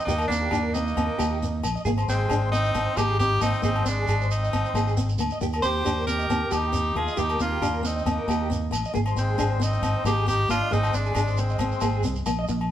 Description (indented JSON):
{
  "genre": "highlife guitar band",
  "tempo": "135 BPM",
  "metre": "4/4",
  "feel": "swing 53% on 16ths",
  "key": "unclear",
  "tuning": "A4 = 439 Hz",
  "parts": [
    { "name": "edgy tenor saxophone", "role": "melody", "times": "0.0-12.3 s", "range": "C4 to C5", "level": "-27 LUFS", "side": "equal", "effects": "none" },
    { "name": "breathy trumpet", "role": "second line", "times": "0.0-12.3 s", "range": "Ab3 to G4", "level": "-34 LUFS", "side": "right 1 dB", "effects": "none" },
    { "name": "electric guitar through a small old amp", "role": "arpeggios", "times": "0.0-12.4 s", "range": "G4 to Eb5", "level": "-33 LUFS", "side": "right 2 dB", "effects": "tremolo" },
    { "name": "fingerpicked acoustic archtop guitar", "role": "accompaniment", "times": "0.1-12.6 s", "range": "Bb3 to D4", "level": "-31 LUFS", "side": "left 2 dB", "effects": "none" },
    { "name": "fingered electric bass", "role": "bass", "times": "0.1-12.7 s", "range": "Ab1 to Eb2", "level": "-26 LUFS", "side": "equal", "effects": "none" },
    { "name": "shekere", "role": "percussion", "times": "0.1-12.6 s", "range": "none", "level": "-34 LUFS", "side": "right 2 dB", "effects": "none" },
    { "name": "agogo bells", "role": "percussion", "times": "0.2-12.7 s", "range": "none", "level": "-32 LUFS", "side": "left 3 dB", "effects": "none" }
  ],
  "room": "wet studio reverb, RT60 0.9 s",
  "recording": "band playing live in one room",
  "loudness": "-22 LUFS",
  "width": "side -11 dB against mid",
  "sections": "0.0-12.5 A section",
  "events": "none",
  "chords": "0.0 Eb; 1.9 Ab; 5.4 Eb; 9.0 Ab"
}